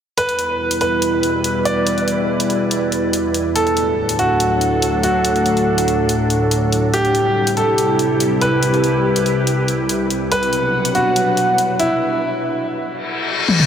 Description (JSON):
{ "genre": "heavy wobble dubstep", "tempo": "142 BPM", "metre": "4/4", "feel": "half-time", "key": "E minor", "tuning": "A4 = 440 Hz", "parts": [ { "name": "bright concert grand piano", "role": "melody", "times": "0.2-13.6 s", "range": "E4 to D5", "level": "-18 LUFS", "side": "equal", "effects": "analog delay" }, { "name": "evolving wavetable pad", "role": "sustained chords", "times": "0.4-12.0 s", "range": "C2 to F#5", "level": "-18 LUFS", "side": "equal", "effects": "chorus, built-in reverb" }, { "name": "big-room dance drum kit", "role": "drums", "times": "0.2-13.7 s", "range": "hi-hat, toms", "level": "-22 LUFS", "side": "left 2 dB", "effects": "studio reverb" }, { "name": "reverse cymbal", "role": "sound effects", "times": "13.0-13.7 s", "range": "none", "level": "-18 LUFS", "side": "left 6 dB", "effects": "none" } ], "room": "wet huge ambient reverb, RT60 7.7 s", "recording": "dreamy mix soaked in reverb", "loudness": "-15 LUFS", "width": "side -8 dB against mid", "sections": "0.2-13.7 A section", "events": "break 12.0-13.7; reverse cymbal 13.0-13.7; drum fill 13.5", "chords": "0.2 Em; 3.6 D; 6.9 C; 10.3 Bm" }